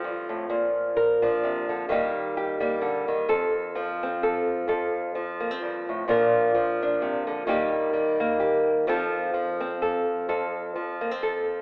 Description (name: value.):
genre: folk, solo fingerstyle acoustic guitar.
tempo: 129 BPM.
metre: 3/4.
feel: swing 56% on 8ths.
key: F mixolydian.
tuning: A4 = 439 Hz.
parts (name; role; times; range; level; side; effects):
nylon-string guitar; solo; 0.0-11.6 s; F2 to Bb4; -23 LUFS; equal; none.
room: wet scoring stage reverb, RT60 1.9 s.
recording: recorded in a church or concert hall, telephone sound.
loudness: -23 LUFS.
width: side -29 dB against mid.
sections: 0.0-3.3 A section; 3.3-11.6 A section.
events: none.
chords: 0.5 Bb; 1.9 Eb; 3.3 F; 6.1 Bb; 7.5 Eb; 8.9 F.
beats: 0.02 | 0.49 0.95 1.42 | 1.89 2.35 2.82 | 3.29 3.75 4.22 | 4.68 5.15 5.61 | 6.08 6.55 7.01 | 7.48 7.95 8.41 | 8.88 9.34 9.81 | 10.28 10.74 11.21.